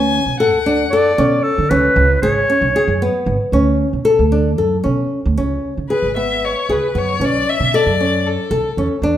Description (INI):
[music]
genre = contemporary instrumental, chamber music in an uneven meter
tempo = 230 BPM (eighths)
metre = 7/8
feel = straight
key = unclear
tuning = A4 = 442 Hz
[part]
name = rich violin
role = melody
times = 0.0-1.1, 5.9-8.8 s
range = A4 to G#5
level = -20 LUFS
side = left 4 dB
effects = none
[part]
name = flamenco guitar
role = arpeggios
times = 0.0-9.2 s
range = B3 to A4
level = -17 LUFS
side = left 2 dB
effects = none
[part]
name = upright bass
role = bass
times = 0.0-9.2 s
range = G#1 to D3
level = -19 LUFS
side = right 2 dB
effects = none
[part]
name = bright clarinet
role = second line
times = 0.9-3.2 s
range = A4 to D5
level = -16 LUFS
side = equal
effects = none
[sound]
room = moderate recital hall reverb, RT60 1.4 s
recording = none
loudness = -14 LUFS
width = side -11 dB against mid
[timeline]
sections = 0.0-5.4 A section; 5.4-9.2 B section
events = none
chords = 0.0 Dmaj7; 1.7 C#5; 3.5 Dmaj7(no3); 5.4 C#5; 7.2 Bm9